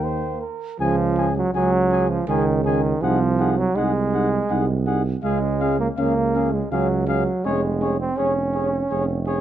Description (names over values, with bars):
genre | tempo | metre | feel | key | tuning
classical, brass quintet | 81 BPM | 3/4 | straight | Db major | A4 = 435 Hz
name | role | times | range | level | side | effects
mellow cornet | melody | 0.0-9.4 s | Db5 to Ab5 | -29 LUFS | left 7 dB | none
dark trumpet | second line | 0.0-9.4 s | Ab4 to C5 | -30 LUFS | right 5 dB | none
clear trombone | accompaniment | 0.0-9.3 s | Eb3 to Db4 | -22 LUFS | right 2 dB | none
mellow French horn | accompaniment | 0.0-9.4 s | Db4 to Eb4 | -30 LUFS | left 5 dB | none
warm tuba | bass | 0.0-9.4 s | F1 to Eb2 | -23 LUFS | right 3 dB | none
room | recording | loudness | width
light reverb | dark, warm production | -19 LUFS | side -11 dB against mid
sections
0.8-9.4 A section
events
none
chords
0.0 Eb; 0.8 Db5; 3.0 Ab7/C; 5.2 Db; 7.4 Db/F